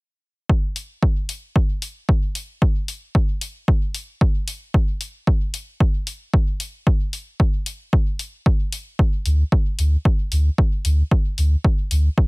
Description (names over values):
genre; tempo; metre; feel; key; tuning
dub techno; 113 BPM; 4/4; straight; unclear; A4 = 440 Hz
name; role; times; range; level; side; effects
electronic kick drum; drums; 0.5-12.3 s; none; -17 LUFS; equal; overdrive
electronic hi-hat; drums; 0.8-12.0 s; none; -30 LUFS; left 3 dB; overdrive
soft dub sub bass; bass; 9.3-12.1 s; D2; -16 LUFS; equal; sidechain pumping
room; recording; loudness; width
digital ambience; none; -19 LUFS; side -30 dB against mid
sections
0.5-12.3 A section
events
none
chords
none